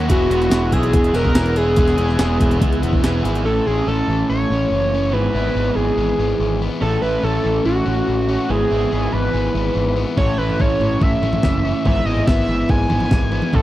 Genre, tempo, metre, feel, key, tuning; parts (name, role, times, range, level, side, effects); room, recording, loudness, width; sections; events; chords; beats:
indie rock; 143 BPM; 4/4; straight; A4 = 441 Hz
mellow tonewheel organ; sustained chords; 0.0-3.4 s; G#4 to E6; -34 LUFS; left 1 dB
overdriven electric guitar; riff; 0.0-13.6 s; G#2 to G#4; -24 LUFS; left 6 dB
overdriven semi-hollow guitar; riff; 0.0-13.6 s; B3 to A4; -24 LUFS; right 7 dB; wide subtle chorus
fuzz picked electric bass; bass; 0.0-13.6 s; E1 to C#2; -21 LUFS; equal; overdrive
overdriven synth lead; melody; 0.1-13.6 s; F#4 to G#5; -21 LUFS; equal; tape echo
glockenspiel with brass mallets; second line; 0.1-3.0 s; B5 to F#6; -36 LUFS; left 3 dB
breakbeat sampler-style drum kit; drums; 0.1-3.4, 10.2-13.6 s; hi-hat, kick drum, snare drum, toms; -19 LUFS; equal; overdrive
little or no reverb; dry, close 1970s-style studio recording; -15 LUFS; side -14 dB against mid
0.0-3.5 A section; 3.5-13.6 B section
0.1 Eadd9; 3.5 A; 5.1 E/G#; 6.8 A; 8.5 E/G#; 10.2 A; 11.9 E/G#
| 0.09 0.51 0.93 1.35 | 1.77 2.19 2.61 3.03 | 3.45 3.87 4.29 4.71 | 5.13 5.56 5.98 6.40 | 6.82 7.24 7.66 8.08 | 8.50 8.92 9.34 9.76 | 10.18 10.60 11.02 11.44 | 11.86 12.28 12.70 13.12 | 13.54